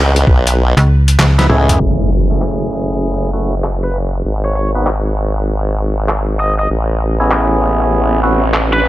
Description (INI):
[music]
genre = glitch hop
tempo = 98 BPM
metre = 4/4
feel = swing 63% on 16ths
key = F# dorian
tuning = A4 = 440 Hz
[part]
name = formant-sweep wobble bass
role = bass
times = 0.0-8.9 s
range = F#1 to C#2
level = -15 LUFS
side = equal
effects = chorus, tube saturation
[part]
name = boom bap sampler-style drum kit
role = drums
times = 0.2-8.7 s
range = crash cymbal, handclaps, hi-hat, rim click, snare drum, toms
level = -18 LUFS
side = equal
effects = none
[part]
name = slap-like FM bass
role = bass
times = 0.8-1.5 s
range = C#2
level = -9 LUFS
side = equal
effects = none
[part]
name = percussive tonewheel organ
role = stabs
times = 1.4-8.4 s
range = A3 to B4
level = -18 LUFS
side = equal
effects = overdrive, sidechain pumping, low-pass filter, tape echo
[part]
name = impact and riser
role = sound effects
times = 1.8-8.9 s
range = none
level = -20 LUFS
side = equal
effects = none
[part]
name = biting lead guitar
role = melody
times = 3.8-8.8 s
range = B4 to D#5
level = -22 LUFS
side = equal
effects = overdrive, vintage 12-bit sampler grit, tape echo
[sound]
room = digital ambience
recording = low-pass filter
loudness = -12 LUFS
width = side -15 dB against mid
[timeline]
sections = 0.0-1.8 A section; 1.8-8.9 B section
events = drum fill 1.2-1.8; impact 1.8-4.3; filter sweep on tonewheel organ 1.8-8.9; filter sweep 1.8-8.9; riser 7.7-8.9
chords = 0.0 C#m7; 1.8 F#m9; 4.3 G#m7; 6.7 Amaj7